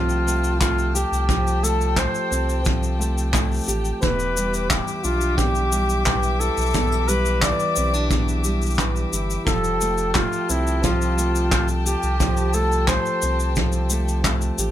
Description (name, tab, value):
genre	folktronica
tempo	88 BPM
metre	4/4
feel	straight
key	F lydian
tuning	A4 = 440 Hz
part	warm flugelhorn	melody	0.0-13.6 s	E4 to D5	-24 LUFS	equal	vintage 12-bit sampler grit, ping-pong delay
part	dark string quartet	sustained chords	0.0-14.7 s	G4 to D6	-30 LUFS	left 2 dB	none
part	fingerpicked steel-string acoustic guitar	arpeggios	0.0-14.7 s	E2 to G4	-27 LUFS	right 1 dB	ping-pong delay
part	warm sub bass	bass	0.0-14.7 s	E1 to C2	-23 LUFS	equal	none
part	cabasa and handclaps	drums	0.1-14.7 s	none	-26 LUFS	left 2 dB	none
part	kick drum	drums	0.6-14.4 s	none	-24 LUFS	equal	none
room	light reverb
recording	none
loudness	-19 LUFS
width	side -11 dB against mid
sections	0.0-14.7 A section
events	none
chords	0.0 Fadd9; 4.0 Em7; 9.5 Fadd9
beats	0.61 | 1.29 1.97 2.65 3.34 | 4.02 4.70 5.38 6.06 | 6.75 7.43 8.11 8.79 | 9.47 10.15 10.84 11.52 | 12.20 12.88 13.56 14.25